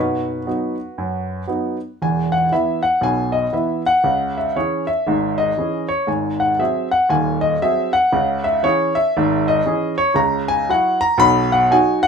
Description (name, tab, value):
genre	jazz, stride piano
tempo	117 BPM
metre	4/4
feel	swing 61% on 8ths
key	unclear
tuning	A4 = 440 Hz
part	clear grand piano	solo	0.0-12.1 s	D#1 to B5	-16 LUFS	equal	none
room	moderate studio ambience, RT60 0.5 s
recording	minimal, uncompressed stereo recording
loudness	-16 LUFS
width	side -6 dB against mid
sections	0.0-2.0 A section; 2.0-12.1 B section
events	none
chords	0.0 B; 2.0 E5; 4.0 C#m; 6.1 G#7; 8.1 C#m; 10.2 F#5/C#; 11.2 B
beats	0.47 0.98 1.49 | 2.00 2.51 3.02 3.53 | 4.04 4.55 5.07 5.58 | 6.09 6.60 7.11 7.62 | 8.13 8.65 9.16 9.67 | 10.18 10.69 11.21 11.72